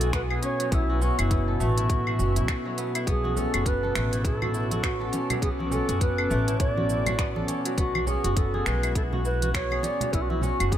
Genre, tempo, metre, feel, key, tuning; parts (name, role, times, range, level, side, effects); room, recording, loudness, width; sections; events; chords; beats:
organic downtempo; 102 BPM; 4/4; swing 59% on 16ths; B dorian; A4 = 436 Hz
reedy bass bansuri; melody; 0.0-10.8 s; E4 to D5; -30 LUFS; equal; ping-pong delay
warm analog pad; sustained chords; 0.0-10.8 s; B2 to D6; -33 LUFS; left 2 dB; chorus, sidechain pumping
kora; arpeggios; 0.0-10.8 s; F#3 to A4; -31 LUFS; right 2 dB; digital delay
upright bass; bass; 0.0-10.8 s; F#1 to B1; -27 LUFS; equal; sidechain pumping
deep house drum kit; drums; 0.0-10.8 s; claves, finger snaps, hi-hat, shaker; -32 LUFS; equal
electronic kick drum; drums; 0.1-10.8 s; -26 LUFS; equal
congas; percussion; 3.2-10.6 s; -35 LUFS; right 2 dB
light reverb, studio reverb; -23 LUFS; side -11 dB against mid
0.0-10.8 A section
0.0 E7; 0.7 F#m7; 3.1 Bm7; 7.8 E7; 10.1 F#m7
0.13 | 0.72 1.31 1.90 2.48 | 3.07 3.66 4.25 4.84 | 5.43 6.01 6.60 7.19 | 7.78 8.37 8.96 9.54 | 10.13 10.72